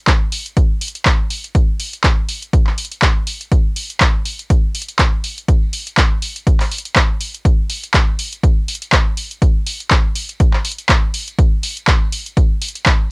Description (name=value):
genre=house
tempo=122 BPM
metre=4/4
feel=swing 56% on 16ths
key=none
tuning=none
part: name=electronic kick drum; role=drums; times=0.1-13.0 s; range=none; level=-14 LUFS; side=equal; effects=cassette tape
part: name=punchy analog drum machine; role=drums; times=0.1-13.0 s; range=handclaps, hi-hat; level=-18 LUFS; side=equal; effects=cassette tape
part: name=tambourine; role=percussion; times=0.1-13.1 s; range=none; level=-45 LUFS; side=right 1 dB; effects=none
room=little or no reverb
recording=home recording on cassette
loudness=-14 LUFS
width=side -33 dB against mid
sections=0.0-13.1 A section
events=none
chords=none